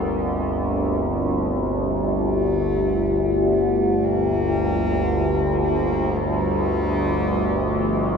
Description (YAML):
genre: dark ambient drone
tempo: 56 BPM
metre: 4/4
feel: straight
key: G minor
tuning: A4 = 435 Hz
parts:
  - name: rich cello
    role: melody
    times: 0.0-8.2 s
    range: F3 to Bb3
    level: -33 LUFS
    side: equal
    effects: tape echo
  - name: dark analog pad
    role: sustained chords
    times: 0.0-1.9 s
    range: C4 to Bb4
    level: -31 LUFS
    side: right 1 dB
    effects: wide subtle chorus
  - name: overtone-sweeping drone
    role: drone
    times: 0.0-8.2 s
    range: G1 to D2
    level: -19 LUFS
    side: equal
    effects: chorus, built-in reverb
  - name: bronze singing bowl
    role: texture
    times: 0.0-8.2 s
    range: none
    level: barely audible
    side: none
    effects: none
room: wet huge ambient reverb, RT60 7.8 s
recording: dark, warm production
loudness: -19 LUFS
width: side -6 dB against mid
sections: 0.0-1.9 A section; 1.9-8.2 B section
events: fade-in on cello 1.9-8.2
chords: 0.0 Gm